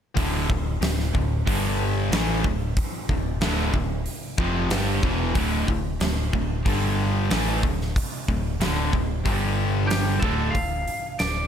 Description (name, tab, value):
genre	hard rock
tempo	92 BPM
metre	4/4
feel	straight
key	D minor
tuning	A4 = 440 Hz
part	tight distorted guitar	riff	0.1-10.5 s	D2 to A3	-30 LUFS	left 10 dB	distortion
part	crunchy overdriven guitar	riff	0.2-10.5 s	D2 to A3	-30 LUFS	left 1 dB	none
part	sludgy distorted guitar	riff	0.2-10.5 s	D2 to A3	-29 LUFS	right 11 dB	overdrive
part	overdriven fingered electric bass	bass	0.2-11.5 s	D1 to A1	-27 LUFS	equal	none
part	huge arena drum kit	drums	0.2-11.3 s	hi-hat, kick drum, snare drum	-26 LUFS	equal	none
part	lightly driven lead guitar	melody	9.9-11.5 s	G4 to F5	-27 LUFS	right 1 dB	analog delay
room	light reverb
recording	none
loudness	-22 LUFS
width	side -8 dB against mid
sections	0.2-10.5 A section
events	none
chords	0.2 D5; 1.5 G5; 2.1 Dm; 6.7 G5; 7.3 D5; 9.2 G5; 10.2 D5; 10.5 Dm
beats	| 0.17 0.82 1.47 2.12 | 2.77 3.41 4.06 4.71 | 5.36 6.01 6.66 7.30 | 7.95 8.60 9.25 9.90 | 10.55 11.20